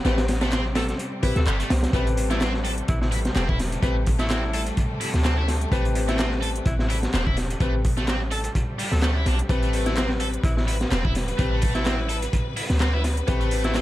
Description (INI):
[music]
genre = breakbeat, breaks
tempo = 127 BPM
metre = 4/4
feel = swing 55% on 16ths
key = A minor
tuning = A4 = 439 Hz
[part]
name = bright studio string section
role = sustained chords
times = 0.0-13.8 s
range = C3 to B4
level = -33 LUFS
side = equal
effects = sidechain pumping
[part]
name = tight distorted guitar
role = riff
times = 0.0-13.8 s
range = G3 to A4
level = -32 LUFS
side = equal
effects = distortion
[part]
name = dark grand piano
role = stabs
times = 0.0-13.8 s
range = C4 to B4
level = -30 LUFS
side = left 3 dB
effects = ping-pong delay
[part]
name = warm 808-style bass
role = bass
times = 0.0-13.8 s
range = E1 to D2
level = -24 LUFS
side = equal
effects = tube saturation
[part]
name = house drum kit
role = drums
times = 0.0-13.8 s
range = handclaps, hi-hat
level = -34 LUFS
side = equal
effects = none
[part]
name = crunchy breakbeat drum kit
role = drums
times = 0.1-13.8 s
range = hi-hat, kick drum, snare drum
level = -25 LUFS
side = equal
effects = none
[part]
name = breathy alto saxophone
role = melody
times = 0.8-13.8 s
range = E4 to A4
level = -34 LUFS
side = equal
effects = small speaker sound, vintage 12-bit sampler grit, ping-pong delay
[sound]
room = little or no reverb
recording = vinyl crackle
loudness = -21 LUFS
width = side -15 dB against mid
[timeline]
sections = 0.0-13.8 A section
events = none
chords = 0.0 Am9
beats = | 0.05 0.52 0.99 1.47 | 1.94 2.41 2.88 3.36 | 3.83 4.30 4.77 5.25 | 5.72 6.19 6.66 7.14 | 7.61 8.08 8.55 9.03 | 9.50 9.97 10.44 10.92 | 11.39 11.86 12.33 12.81 | 13.28 13.75